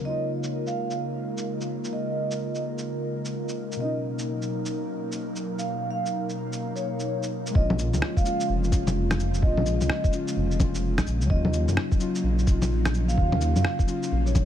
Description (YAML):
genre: future garage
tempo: 128 BPM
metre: 4/4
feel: swing 63% on 16ths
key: Bb phrygian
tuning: A4 = 440 Hz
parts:
  - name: muted felt-like synth keys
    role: accompaniment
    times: 0.0-14.4 s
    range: B2 to F4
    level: -32 LUFS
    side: left 3 dB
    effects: chorus, sidechain pumping, ping-pong delay
  - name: airy breathy pad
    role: sustained chords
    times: 0.0-14.4 s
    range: B2 to Bb4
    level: -31 LUFS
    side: right 1 dB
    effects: chorus, sidechain pumping
  - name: vibraphone with soft mallets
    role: melody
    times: 0.1-14.4 s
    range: Db5 to F5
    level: -32 LUFS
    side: right 2 dB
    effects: vintage 12-bit sampler grit, dub echo
  - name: electronic shaker, bongos, cabasa and rim click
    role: drums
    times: 0.4-14.4 s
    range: none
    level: -30 LUFS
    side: left 1 dB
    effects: low-pass filter on perc, studio ambience, low-pass filter on snare
  - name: dark detuned saw bass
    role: bass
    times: 7.6-14.4 s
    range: F1 to Gb2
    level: -25 LUFS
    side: equal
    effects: none
  - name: electronic kick drum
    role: drums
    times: 7.6-14.4 s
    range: none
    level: -23 LUFS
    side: equal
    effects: studio ambience
room: little or no reverb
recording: none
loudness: -24 LUFS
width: side -10 dB against mid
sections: 0.0-7.6 A section; 7.6-14.4 B section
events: filter sweep on analog synth pad 0.0-7.6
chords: 0.1 Db6; 3.8 Bmaj7; 7.6 Bbm7; 11.3 Ebm7